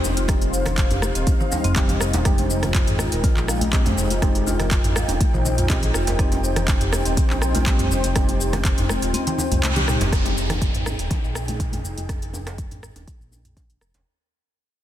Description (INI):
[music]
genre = afro house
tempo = 122 BPM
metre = 4/4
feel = straight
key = F minor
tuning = A4 = 444 Hz
[part]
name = warm analog pad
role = sustained chords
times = 0.0-14.0 s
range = Ab3 to G5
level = -29 LUFS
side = left 1 dB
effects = chorus, sidechain pumping
[part]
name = marimba with medium mallets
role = arpeggios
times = 0.0-10.1 s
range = G3 to F5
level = -29 LUFS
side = left 2 dB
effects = sidechain pumping, ping-pong delay
[part]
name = deep mellow chord stab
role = stabs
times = 0.0-10.1 s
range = G3 to G4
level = -30 LUFS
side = right 2 dB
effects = chorus, sidechain pumping, ping-pong delay
[part]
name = smooth gliding synth bass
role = bass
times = 0.0-14.0 s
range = Eb1 to C2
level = -25 LUFS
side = equal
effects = sidechain pumping
[part]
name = afro-pop drum kit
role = drums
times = 0.0-14.0 s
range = handclaps, hi-hat, rim click, shaker, toms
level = -25 LUFS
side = equal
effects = small room ambience
[part]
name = djembe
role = percussion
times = 0.0-14.0 s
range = none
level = -33 LUFS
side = right 2 dB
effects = none
[part]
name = congas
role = percussion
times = 0.2-12.1 s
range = none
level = -32 LUFS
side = left 2 dB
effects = none
[part]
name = electronic kick drum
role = drums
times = 0.3-13.7 s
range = none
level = -21 LUFS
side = equal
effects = small room ambience
[part]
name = downlifter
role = sound effects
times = 10.1-14.1 s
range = none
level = -32 LUFS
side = equal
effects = none
[sound]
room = light reverb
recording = dense, heavily limited modern master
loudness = -18 LUFS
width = side -12 dB against mid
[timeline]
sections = 0.0-10.1 A section; 10.1-14.1 B section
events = drop 0.0-10.1; kick drops out 9.1-10.1; band accent 9.6; drum fill 9.8-10.1; fade-out 10.1-14.1; filter sweep on analog synth bass 10.1-14.1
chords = 0.0 Cm; 2.3 Fm9; 6.2 Cm; 10.1 Fm9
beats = | 0.29 0.78 1.27 1.76 | 2.25 2.75 3.24 3.73 | 4.22 4.71 5.21 5.70 | 6.19 6.68 7.17 7.67 | 8.16 8.65 9.14 9.63 | 10.12 10.62 11.11 11.60 | 12.09 12.58 13.07 13.57